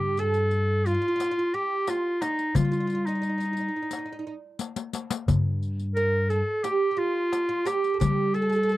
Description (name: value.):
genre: Turkish makam ensemble.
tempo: 88 BPM.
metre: 4/4.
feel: straight.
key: G makam ussak.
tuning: A4 = 440 Hz.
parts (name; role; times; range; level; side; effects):
clear clarinet; melody; 0.0-8.8 s; Eb4 to Bb4; -26 LUFS; equal; none.
oud; second line; 0.0-8.8 s; Eb4 to Bb4; -31 LUFS; right 6 dB; none.
upright bass; bass; 0.0-8.8 s; G2 to G3; -26 LUFS; equal; none.
darbuka; percussion; 0.0-8.2 s; none; -28 LUFS; left 3 dB; none.
riq; percussion; 0.2-8.8 s; none; -36 LUFS; left 8 dB; none.
room: little or no reverb.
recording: dry, close 1970s-style studio recording.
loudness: -24 LUFS.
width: side -16 dB against mid.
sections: 0.0-8.8 A section.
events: drum fill 4.6-5.3.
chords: none.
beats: 0.52 1.20 1.88 | 2.56 3.24 3.92 4.60 | 5.28 5.96 6.64 7.33 | 8.01 8.69.